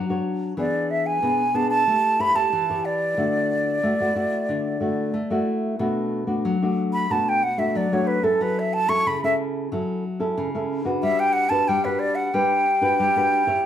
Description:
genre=samba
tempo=92 BPM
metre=4/4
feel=straight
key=unclear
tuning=A4 = 440 Hz
part: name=nylon-string guitar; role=accompaniment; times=0.0-13.7 s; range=B2 to C#5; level=-24 LUFS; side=left 1 dB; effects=none
part: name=breathy silver concert flute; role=melody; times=0.6-13.7 s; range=A4 to C#6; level=-21 LUFS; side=right 1 dB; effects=none
room=wet large studio reverb, RT60 0.8 s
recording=band playing live in one room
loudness=-20 LUFS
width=side -10 dB against mid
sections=0.0-5.8 A section; 5.8-13.7 B section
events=flute solo 5.8-13.7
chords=0.0 Bmadd9 (rootless); 0.6 E7; 1.9 A7; 3.2 Dadd9; 5.8 Bm7; 8.4 F#m7; 11.0 Em9/G (rootless)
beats=| 0.58 1.23 1.88 2.53 | 3.18 3.83 4.49 5.14 | 5.79 6.45 7.10 7.75 | 8.41 9.06 9.72 10.37 | 11.03 11.68 12.34 12.99 | 13.65

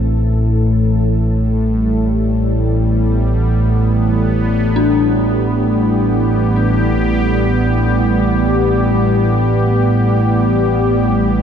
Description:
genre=dark ambient drone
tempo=free time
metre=none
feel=none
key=unclear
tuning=A4 = 441 Hz
part: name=sweeping resonant pad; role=sustained chords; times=0.0-11.4 s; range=A2 to A4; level=-16 LUFS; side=right 1 dB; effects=chorus, shimmer reverb
part: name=dark detuned synth bell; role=arpeggios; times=0.0-11.4 s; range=D4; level=-22 LUFS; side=left 3 dB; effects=chorus, phaser, tape echo, shimmer reverb
part: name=analog drone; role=drone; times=0.0-11.4 s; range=A1 to A2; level=-15 LUFS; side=equal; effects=chorus
room=wet cathedral reverb, RT60 7.0 s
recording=none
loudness=-12 LUFS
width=side -8 dB against mid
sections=0.0-11.4 A section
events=filter sweep on synth drone 0.0-11.4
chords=0.0 Em/A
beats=free time

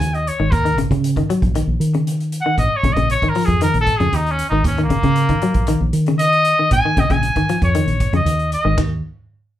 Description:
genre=afrobeat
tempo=116 BPM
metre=4/4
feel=straight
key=Eb minor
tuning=A4 = 440 Hz
part: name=bright trumpet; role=melody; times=0.0-8.8 s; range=Bb3 to Ab5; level=-18 LUFS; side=equal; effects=none
part: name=semi-hollow electric guitar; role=arpeggios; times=0.0-8.9 s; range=Db3 to Gb3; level=-21 LUFS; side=left 3 dB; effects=none
part: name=fingered electric bass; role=bass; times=0.0-9.0 s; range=Ab1 to Eb3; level=-19 LUFS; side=equal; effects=none
part: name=vintage drum kit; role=drums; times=0.0-8.9 s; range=hi-hat, kick drum, ride cymbal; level=-23 LUFS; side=right 1 dB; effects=none
room=wet studio ambience, RT60 0.4 s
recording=band playing live in one room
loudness=-15 LUFS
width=side -12 dB against mid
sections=0.0-8.8 A section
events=trumpet solo 0.0-8.8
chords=0.0 Bbm7 (rootless); 0.5 Eb7(no3); 2.6 Bbm; 4.6 Eb7(no3); 6.7 Bbm7; 8.8 N.C.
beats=0.01 | 0.52 1.04 1.55 2.07 | 2.58 3.10 3.61 4.13 | 4.65 5.16 5.68 6.19 | 6.71 7.22 7.74 8.26 | 8.77

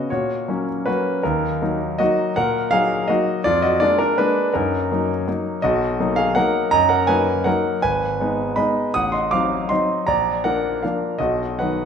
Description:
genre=classical, piano waltz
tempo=162 BPM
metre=3/4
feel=uneven beats, rubato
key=unclear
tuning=A4 = 440 Hz
part: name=clear grand piano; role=solo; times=0.0-11.9 s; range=Ab1 to Eb6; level=-18 LUFS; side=equal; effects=none
room=wet recital hall reverb, RT60 1.5 s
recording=minimal, uncompressed stereo recording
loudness=-18 LUFS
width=side -7 dB against mid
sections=0.0-11.9 A section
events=none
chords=0.1 F#/A#; 1.3 D#m; 3.5 A#7/E#; 4.5 D#m/F#; 5.6 Bmaj7; 7.8 Abm; 8.9 Adim7; 10.1 Bb; 11.2 B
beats=| 0.12 0.49 0.88 | 1.25 1.62 2.00 | 2.37 2.72 3.09 | 3.45 3.81 4.18 | 4.54 4.90 5.27 | 5.64 5.99 6.37 | 6.73 7.09 7.46 | 7.83 8.20 8.57 | 8.95 9.31 9.70 | 10.08 10.45 10.83 | 11.20 11.59

